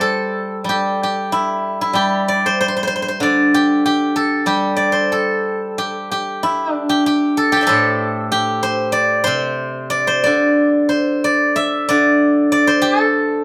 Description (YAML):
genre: chinese traditional, Chinese solo plucked strings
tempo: 94 BPM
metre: 2/4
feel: rubato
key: G zhi mode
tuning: A4 = 440 Hz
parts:
  - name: steel-string zither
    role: solo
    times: 0.0-13.4 s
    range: A2 to A5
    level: -17 LUFS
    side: equal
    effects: none
room: light reverb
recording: band playing live in one room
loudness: -17 LUFS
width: mono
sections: 0.0-5.8 A section; 5.8-13.4 B section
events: none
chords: none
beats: 0.02 | 0.68 1.33 | 1.97 2.60 | 3.23 3.85 | 4.47 5.13 | 5.79 6.45 | 7.09 7.73 | 8.35 8.97 | 9.61 10.27 | 10.93 11.59 | 12.23 12.86